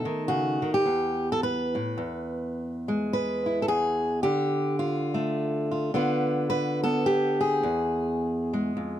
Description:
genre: folk, solo fingerstyle acoustic guitar.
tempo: 106 BPM.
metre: 3/4.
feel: swing 59% on 8ths.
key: unclear.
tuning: A4 = 440 Hz.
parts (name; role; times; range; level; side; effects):
fingerpicked steel-string acoustic guitar; solo; 0.0-9.0 s; E2 to B4; -24 LUFS; equal; none.
room: little or no reverb.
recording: close, detailed microphones.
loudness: -24 LUFS.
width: side -11 dB against mid.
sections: 0.0-9.0 A section.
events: none.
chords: 0.0 B7 (rootless); 0.8 A5/E; 2.0 E; 4.2 Dm; 5.9 Bdim/D; 7.6 E.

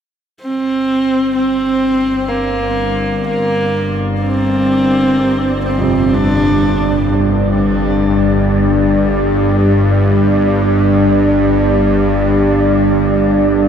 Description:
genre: dark ambient drone.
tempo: free time.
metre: none.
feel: none.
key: G minor.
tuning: A4 = 443 Hz.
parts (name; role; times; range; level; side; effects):
rich horsehead fiddle; melody; 0.4-7.1 s; Bb3 to D4; -16 LUFS; right 1 dB; shimmer reverb, tape echo.
bowed-like drone; drone; 1.4-13.7 s; G1 to G2; -14 LUFS; left 1 dB; built-in reverb.
deep dark ambient pad; sustained chords; 3.9-13.7 s; G3 to D5; -17 LUFS; right 2 dB; chorus, built-in reverb, shimmer reverb.
wind-like tuned noise texture; texture; 3.0-13.7 s; D5; -27 LUFS; right 2 dB; built-in reverb, shimmer reverb.
dark grand piano; arpeggios; 5.0-13.7 s; F2 to D4; -24 LUFS; right 2 dB; none.
room: wet cathedral reverb, RT60 5.5 s.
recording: none.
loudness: -11 LUFS.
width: side -8 dB against mid.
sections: 0.5-13.7 A section.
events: fade-in on ambient pad 0.5-13.7; fade-in on synth texture 0.5-13.7.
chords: 0.5 G5.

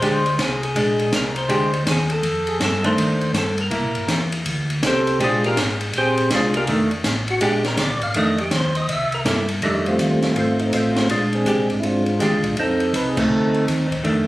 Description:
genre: soul jazz organ trio.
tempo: 162 BPM.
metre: 4/4.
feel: swing 64% on 8ths.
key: unclear.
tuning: A4 = 442 Hz.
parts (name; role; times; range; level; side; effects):
percussive tonewheel organ; melody; 0.0-13.9 s; G3 to F5; -21 LUFS; equal; slow rotary speaker, overdrive.
archtop guitar, miked and amplified; accompaniment; 0.0-14.3 s; Eb3 to A4; -22 LUFS; right 1 dB; none.
mellow tonewheel organ; bass; 0.0-14.3 s; F1 to G2; -25 LUFS; equal; slow rotary speaker.
open jazz drum kit; drums; 0.0-14.2 s; crash cymbal, hi-hat, kick drum, ride cymbal, snare drum; -24 LUFS; equal; none.
room: moderate large studio reverb, RT60 1.0 s.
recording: recorded on a phone in the room, studio reverb.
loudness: -17 LUFS.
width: side -17 dB against mid.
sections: 0.0-9.6 A section; 9.6-14.3 B section.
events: tonewheel organ solo 0.0-9.6; band accent 13.1.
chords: 0.0 Bb13; 2.2 F13; 3.7 C13; 5.2 Bb13; 6.7 F6; 7.4 Bb6; 8.2 F6; 8.9 C6; 9.6 F13; 11.1 Bb13; 12.6 F13.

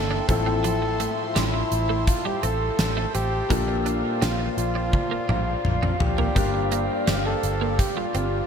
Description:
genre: 1980s-style pop.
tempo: 84 BPM.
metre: 4/4.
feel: straight.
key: unclear.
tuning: A4 = 440 Hz.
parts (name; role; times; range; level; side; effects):
mellow flugelhorn; melody; 0.0-8.5 s; E4 to A4; -28 LUFS; right 1 dB; diffuse ambient delay.
clear baby grand piano; accompaniment; 0.0-8.5 s; G2 to E5; -30 LUFS; left 4 dB; lush chorus.
phased analog pad; sustained chords; 0.0-8.5 s; Bb3 to C6; -31 LUFS; equal; phaser, chorus.
vintage muted fingered electric bass; bass; 0.0-8.4 s; G1 to Bb1; -27 LUFS; equal; none.
twelve-string electric guitar; riff; 0.1-8.3 s; F3 to D4; -32 LUFS; right 6 dB; ensemble chorus, diffuse ambient delay.
gated 80s drum kit; drums; 0.3-8.3 s; hi-hat, kick drum, snare drum, toms; -26 LUFS; equal; none.
room: moderate huge ambient reverb, RT60 8.1 s.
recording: dreamy mix soaked in reverb.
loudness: -21 LUFS.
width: side -7 dB against mid.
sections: 0.0-8.5 A section.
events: drum fill 4.9-6.4.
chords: 0.3 Fmaj7/A; 3.5 Bbmaj7; 6.4 Gm7.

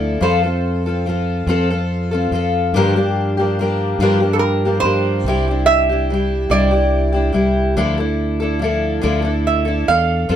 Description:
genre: folk.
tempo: 48 BPM (dotted quarters).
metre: 6/8.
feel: straight.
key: unclear.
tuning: A4 = 440 Hz.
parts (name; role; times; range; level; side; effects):
lap resonator guitar; second line; 0.0-10.4 s; A4 to F5; -18 LUFS; right 4 dB; none.
fingerpicked twelve-string acoustic guitar; accompaniment; 0.0-10.4 s; G2 to A4; -18 LUFS; left 1 dB; none.
fingered electric bass; bass; 0.0-10.4 s; C2 to G2; -20 LUFS; equal; none.
room: moderate small room ambience, RT60 0.5 s.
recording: band playing live in one room.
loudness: -15 LUFS.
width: side -10 dB against mid.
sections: 0.0-10.4 A section.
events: resonator guitar played with a steel bar solo 0.0-10.4.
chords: 0.2 F; 2.7 Gm7; 5.3 Cadd9; 7.8 Dmadd9.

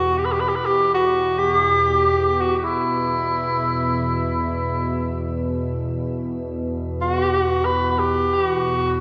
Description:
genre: world meditative, free-time meditation music.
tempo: free time.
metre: none.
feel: none.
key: E hirajoshi.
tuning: A4 = 443 Hz.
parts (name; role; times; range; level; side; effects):
warm tenor saxophone; melody; 0.0-9.0 s; E4 to B4; -21 LUFS; equal; shimmer reverb, dub echo.
deep dark ambient pad; drone; 0.0-9.0 s; E2 to B2; -27 LUFS; equal; chorus, built-in reverb.
room: wet spring reverb, RT60 2.3 s.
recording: echo-heavy mix.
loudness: -21 LUFS.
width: mono.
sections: 0.0-9.0 A section.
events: none.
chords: none.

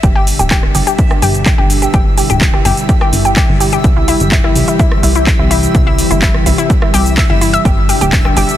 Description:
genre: progressive house.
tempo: 126 BPM.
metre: 4/4.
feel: straight.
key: G major.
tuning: A4 = 439 Hz.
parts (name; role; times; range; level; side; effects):
airy breathy pad; sustained chords; 0.0-8.6 s; B2 to G4; -18 LUFS; left 1 dB; chorus, sidechain pumping.
analog pluck; arpeggios; 0.0-8.5 s; E4 to E5; -17 LUFS; left 1 dB; chorus, sidechain pumping, tape echo.
plucky analog bass; bass; 0.0-8.4 s; D1 to C2; -16 LUFS; equal; sidechain pumping.
electronic kick drum; drums; 0.0-8.2 s; none; -13 LUFS; equal; overdrive.
house drum kit; drums; 0.0-8.6 s; handclaps, hi-hat, rim click, shaker; -18 LUFS; equal; overdrive.
backwards swelling texture; texture; 0.0-8.6 s; E5 to E6; -26 LUFS; right 2 dB; built-in reverb, sidechain pumping.
room: little or no reverb.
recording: dense, heavily limited modern master.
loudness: -9 LUFS.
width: side -12 dB against mid.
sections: 0.0-8.6 A section.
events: none.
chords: 0.0 G; 3.8 C; 7.7 G.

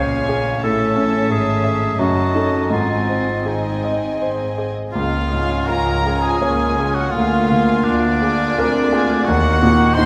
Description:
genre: classical.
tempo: 79-93 BPM.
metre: 3/4.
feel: rubato.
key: Db major.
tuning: A4 = 442 Hz.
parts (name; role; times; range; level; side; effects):
clear concert grand piano; melody; 0.0-10.1 s; Db2 to F5; -22 LUFS; equal; none.
warm chamber violin section; melody; 0.0-10.1 s; Gb5 to A5; -34 LUFS; equal; none.
bright clarinet; second line; 0.0-4.6 s; Eb4 to Db5; -25 LUFS; equal; none.
warm chamber violin section; second line; 0.0-10.1 s; D5 to C6; -30 LUFS; equal; none.
dark studio viola section; accompaniment; 0.0-10.1 s; Bb3 to F4; -29 LUFS; equal; none.
dark symphonic double bass section; bass; 0.0-10.1 s; Gb1 to Eb2; -30 LUFS; equal; none.
rich symphonic cello section; bass; 0.0-10.1 s; Db2 to Bb2; -28 LUFS; equal; none.
mellow hollow flute section; second line; 4.9-10.1 s; D5 to C6; -29 LUFS; equal; none.
warm oboe; second line; 4.9-10.1 s; D4 to C5; -24 LUFS; equal; none.
dark French horn section; sustained chords; 4.9-10.1 s; F3 to Eb4; -25 LUFS; equal; none.
room: wet concert hall reverb, RT60 2.2 s.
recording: recorded in a church or concert hall.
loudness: -18 LUFS.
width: mono.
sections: 0.0-4.9 A section; 4.9-10.1 B section.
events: none.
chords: 0.0 Db; 0.6 A; 2.0 Ebm7b5/Gb; 2.7 Ab; 4.9 Db; 7.1 Bb7/D; 9.3 Ebm.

